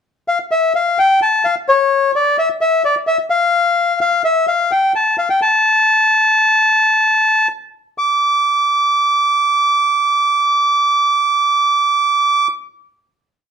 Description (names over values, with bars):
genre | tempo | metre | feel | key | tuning
tango | 129 BPM | 4/4 | rubato | D harmonic minor | A4 = 435 Hz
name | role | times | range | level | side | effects
bandoneon | solo | 0.3-12.5 s | C#5 to D6 | -12 LUFS | equal | none
room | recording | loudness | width
wet club reverb, RT60 0.8 s | heard from further back in the room | -12 LUFS | side -8 dB against mid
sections
0.0-0.5 pickup bar; 0.5-8.0 A section; 8.0-11.7 final note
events
none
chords
none